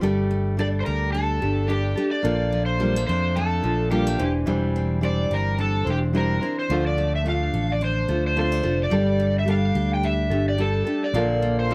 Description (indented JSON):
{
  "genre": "acoustic pop",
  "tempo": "108 BPM",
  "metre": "4/4",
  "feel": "swing 55% on 16ths",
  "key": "unclear",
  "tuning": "A4 = 439 Hz",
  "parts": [
    { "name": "nylon-string guitar", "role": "accompaniment", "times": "0.0-11.7 s", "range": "Bb2 to C5", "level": "-28 LUFS", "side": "equal", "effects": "none" },
    { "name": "picked steel-string acoustic guitar", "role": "arpeggios", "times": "0.0-11.7 s", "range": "E3 to A4", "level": "-33 LUFS", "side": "equal", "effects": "none" },
    { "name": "fingered electric bass", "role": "bass", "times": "0.0-11.7 s", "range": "E1 to F2", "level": "-27 LUFS", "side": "equal", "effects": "none" },
    { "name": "overdriven slide guitar", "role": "melody", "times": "0.6-11.7 s", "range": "G4 to G5", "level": "-29 LUFS", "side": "equal", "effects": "none" }
  ],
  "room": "light reverb",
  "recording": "close, detailed microphones",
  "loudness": "-23 LUFS",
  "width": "mono",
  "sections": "0.0-11.7 A section",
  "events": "none",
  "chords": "0.0 Gsus2; 2.2 Bbmaj7; 4.2 Cadd9/E; 6.7 Dm; 8.9 Gsus2; 11.1 Bbmaj7"
}